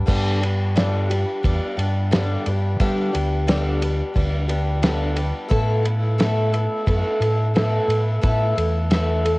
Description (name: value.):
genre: folk rock and heartland rock.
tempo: 88 BPM.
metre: 4/4.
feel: straight.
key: unclear.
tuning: A4 = 437 Hz.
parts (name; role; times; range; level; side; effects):
picked twelve-string acoustic guitar; accompaniment; 0.0-9.4 s; G2 to A4; -23 LUFS; left 1 dB; none.
fingered electric bass; bass; 0.0-9.4 s; D2 to G3; -21 LUFS; equal; none.
cloth-damped thuddy drum kit; drums; 0.1-9.4 s; crash cymbal, kick drum, ride cymbal, snare drum; -24 LUFS; equal; cassette tape.
room: studio ambience.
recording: home recording on cassette.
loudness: -18 LUFS.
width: side -22 dB against mid.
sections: 0.1-9.4 A section.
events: none.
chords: 0.1 G; 5.5 Asus2.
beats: | 0.08 0.76 1.44 2.12 | 2.80 3.48 4.16 4.84 | 5.52 6.20 6.88 7.55 | 8.23 8.91.